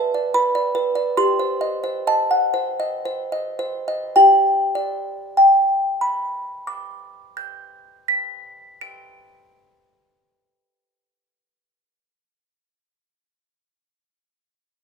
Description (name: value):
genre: classical, lullaby for music box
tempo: 51-76 BPM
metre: 3/4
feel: straight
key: G major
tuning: A4 = 440 Hz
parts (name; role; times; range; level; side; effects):
- music box; solo; 0.0-12.6 s; G4 to D7; -18 LUFS; equal; none
room: moderate recital hall reverb, RT60 1.5 s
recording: minimal, uncompressed stereo recording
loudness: -17 LUFS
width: side -5 dB against mid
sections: 0.0-4.1 A section; 4.1-11.2 B section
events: slowing down 0.0-4.1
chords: 0.0 G; 1.2 Cm/G; 4.1 G